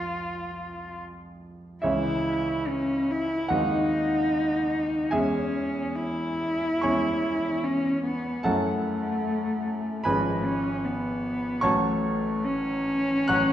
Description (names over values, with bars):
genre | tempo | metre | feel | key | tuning
classical, romantic duo for cello and grand piano | 74 BPM | 4/4 | uneven beats, rubato | C# minor | A4 = 438 Hz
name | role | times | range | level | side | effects
warm cello | melody | 0.0-13.5 s | G#3 to F4 | -27 LUFS | left 1 dB | none
bright concert grand piano | accompaniment | 0.0-13.5 s | G#1 to F#6 | -28 LUFS | right 1 dB | none
room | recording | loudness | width
wet recital hall reverb, RT60 1.5 s | dark, warm production | -24 LUFS | side -11 dB against mid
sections
0.0-1.8 A section; 1.8-13.5 B section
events
none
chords
0.0 Fm; 1.8 C#m; 3.5 G#7/D#; 5.1 C#m/E; 8.5 F#m7; 10.1 C#7/G#; 11.6 F#m/A